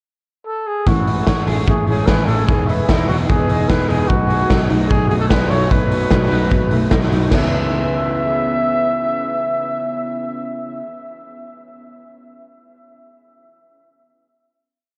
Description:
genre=jangly indie pop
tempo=149 BPM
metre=4/4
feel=straight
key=C# minor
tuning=A4 = 441 Hz
part: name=breathy trumpet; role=melody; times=0.5-10.5 s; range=E4 to E5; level=-24 LUFS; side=equal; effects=tape echo
part: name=fingerpicked steel-string acoustic guitar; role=accompaniment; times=0.9-10.9 s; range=A2 to G#4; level=-27 LUFS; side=equal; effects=analog chorus
part: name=electric guitar through a small old amp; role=arpeggios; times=0.9-10.9 s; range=E3 to G#4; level=-28 LUFS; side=equal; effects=analog chorus, tape echo
part: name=picked electric bass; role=bass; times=0.9-10.5 s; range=E1 to C#2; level=-23 LUFS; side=equal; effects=none
part: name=raw garage drum kit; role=drums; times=0.9-7.4 s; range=crash cymbal, hi-hat, kick drum, snare drum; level=-20 LUFS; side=equal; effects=none
room=wet huge ambient reverb, RT60 8.0 s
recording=dreamy mix soaked in reverb, cassette tape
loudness=-17 LUFS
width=mono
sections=0.0-0.9 pickup bar; 0.9-7.3 bridge; 7.3-10.5 final chord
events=none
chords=0.0 N.C.; 0.9 Amaj7; 2.5 Emaj7; 4.1 B7; 7.3 C#m7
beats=0.06 0.47 | 0.87 1.27 1.68 2.08 | 2.49 2.89 3.29 3.70 | 4.10 4.51 4.91 5.31 | 5.72 6.12 6.52 6.92 | 7.32 7.72 8.12 8.52 | 8.92 9.31 9.71 10.11

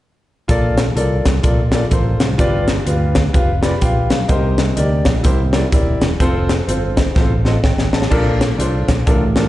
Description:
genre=uptempo gospel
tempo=126 BPM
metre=4/4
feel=swing 61% on 8ths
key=Bb major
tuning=A4 = 440 Hz
part: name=warm upright piano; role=accompaniment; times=0.5-9.5 s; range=G2 to B5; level=-20 LUFS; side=left 1 dB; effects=none
part: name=fingered electric bass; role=bass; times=0.5-9.5 s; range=Eb1 to D2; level=-18 LUFS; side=equal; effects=none
part: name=crisp fusion drum kit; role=drums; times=0.5-9.4 s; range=crash cymbal, hi-hat, kick drum, snare drum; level=-16 LUFS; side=equal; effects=none
room=light reverb, small room ambience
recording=live gig heard through the venue's PA, recital hall reverb, nothing above 11.0 kHz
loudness=-13 LUFS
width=side -15 dB against mid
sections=0.5-8.1 A section; 8.1-9.5 B section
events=upright piano fill 3.3-4.3; drum fill 7.2-8.1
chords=0.5 Bbmaj7; 2.4 G7; 4.3 Cm7; 5.2 C7; 6.2 F; 8.1 Bbmaj7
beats=| 0.49 0.97 1.44 1.92 | 2.39 2.87 3.34 3.82 | 4.29 4.77 5.25 5.72 | 6.20 6.68 7.16 7.63 | 8.11 8.59 9.06

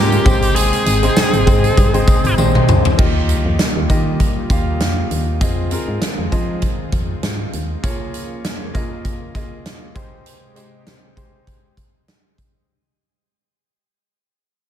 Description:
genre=1980s-style pop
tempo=99 BPM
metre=4/4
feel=swing 55% on 16ths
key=Ab major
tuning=A4 = 440 Hz
part: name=biting lead guitar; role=melody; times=0.0-2.3 s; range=G4 to Ab4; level=-22 LUFS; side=equal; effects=overdrive, ping-pong delay, shimmer reverb
part: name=clear grand piano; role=accompaniment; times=0.0-12.7 s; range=Ab2 to G5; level=-22 LUFS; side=equal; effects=shimmer reverb
part: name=lush unison pad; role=sustained chords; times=0.0-12.7 s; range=F2 to G5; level=-29 LUFS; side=equal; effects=chorus, phaser, shimmer reverb
part: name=solid FM bass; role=bass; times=0.0-7.8 s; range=Ab1 to F3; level=-19 LUFS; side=equal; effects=none
part: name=big rock drum kit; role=drums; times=0.1-12.5 s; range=crash cymbal, hi-hat, kick drum, snare drum, tambourine, toms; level=-17 LUFS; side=equal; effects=none
part: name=tambourine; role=percussion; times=0.3-3.0 s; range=none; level=-34 LUFS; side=left 9 dB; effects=none
room=light reverb, small room ambience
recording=none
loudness=-14 LUFS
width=side -10 dB against mid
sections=0.0-3.0 A section; 3.0-12.7 B section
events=drum fill 2.4-3.0; fade-out 3.0-12.7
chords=0.3 Abmaj7; 3.0 Ebadd9; 5.4 Fm7; 7.8 Db6/F; 10.0 Abmaj7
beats=| 0.56 1.17 1.77 2.38 | 2.99 3.59 4.20 4.80 | 5.41 6.02 6.62 7.23 | 7.83 8.44 9.05 9.65 | 10.26 10.87 11.47 12.08

